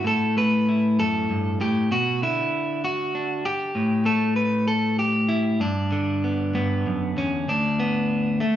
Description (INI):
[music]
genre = folk, solo fingerstyle acoustic guitar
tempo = 65 BPM (dotted quarters)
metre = 6/8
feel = rubato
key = D major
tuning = A4 = 439 Hz
[part]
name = electric guitar at the edge of break-up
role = solo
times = 0.0-8.6 s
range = D2 to B4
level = -21 LUFS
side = equal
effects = none
[sound]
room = moderate large studio reverb, RT60 0.9 s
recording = band playing live in one room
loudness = -21 LUFS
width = side -11 dB against mid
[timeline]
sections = 0.0-7.5 A section; 7.5-8.6 B section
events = none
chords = 0.0 A5; 1.9 Bm; 3.7 N.C.; 5.6 Gmaj7; 7.5 D5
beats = | 0.05 0.98 | 1.91 2.83 | 3.75 4.66 | 5.60 6.54 | 7.48 8.41